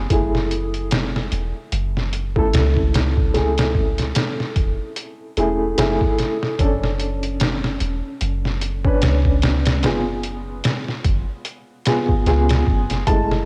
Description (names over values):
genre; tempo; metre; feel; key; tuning
trip hop; 74 BPM; 4/4; swing 57% on 16ths; F# minor; A4 = 438 Hz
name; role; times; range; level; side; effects
dark upright piano; accompaniment; 0.0-13.5 s; G#3 to B4; -25 LUFS; equal; tremolo, cassette tape, tape echo
soft 808-style bass; bass; 0.0-13.5 s; E1 to C#2; -24 LUFS; equal; none
trip hop sampler-style drum kit; drums; 0.1-13.5 s; hi-hat, kick drum, snare drum; -23 LUFS; equal; cassette tape
felt-muted upright piano; melody; 13.1-13.4 s; A5; -26 LUFS; equal; cassette tape
room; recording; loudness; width
light reverb, studio reverb; home recording on cassette; -20 LUFS; mono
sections
0.0-13.5 A section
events
none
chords
0.1 F#m7; 6.6 Bm7; 9.8 C#7/F# (rootless)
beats
| 0.10 0.91 1.73 2.54 | 3.35 4.16 4.97 5.78 | 6.59 7.40 8.21 9.02 | 9.83 10.64 11.46 12.27 | 13.08